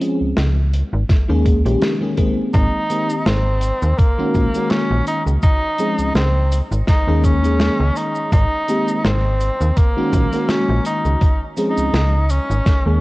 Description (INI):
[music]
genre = vaporwave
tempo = 83 BPM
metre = 4/4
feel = swing 55% on 16ths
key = unclear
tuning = A4 = 440 Hz
[part]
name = FM electric piano with soft pad layer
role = accompaniment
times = 0.0-13.0 s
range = Eb3 to Ab4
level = -21 LUFS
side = left 1 dB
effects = tremolo, analog chorus
[part]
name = modern studio drum kit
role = drums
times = 0.0-12.8 s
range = cabasa, hi-hat, snare drum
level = -24 LUFS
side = equal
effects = none
[part]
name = slap-like FM bass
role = bass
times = 0.2-13.0 s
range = Ab1 to Eb2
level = -17 LUFS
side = equal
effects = none
[part]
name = electronic kick drum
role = drums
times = 1.1-12.8 s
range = none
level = -16 LUFS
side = equal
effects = none
[part]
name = breathy tenor saxophone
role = melody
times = 2.5-13.0 s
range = Bb3 to Eb4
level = -22 LUFS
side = equal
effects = vintage 12-bit sampler grit, tape echo
[sound]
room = light reverb, studio reverb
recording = worn, warbling old tape, cassette tape, warbly pitch drift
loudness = -15 LUFS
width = side -20 dB against mid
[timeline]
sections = 0.0-13.0 A section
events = none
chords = 0.0 Dbmaj7; 1.1 Eb7sus4; 2.5 Abmaj9; 4.0 Gb69/Bb; 5.4 Dbmaj7; 6.9 Eb7sus4; 8.3 Abmaj9; 9.8 Gb69/Bb; 11.2 Dbmaj7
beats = 0.37 1.09 1.82 | 2.54 3.26 3.99 4.71 | 5.43 6.15 6.88 7.60 | 8.32 9.05 9.77 10.49 | 11.21 11.94 12.66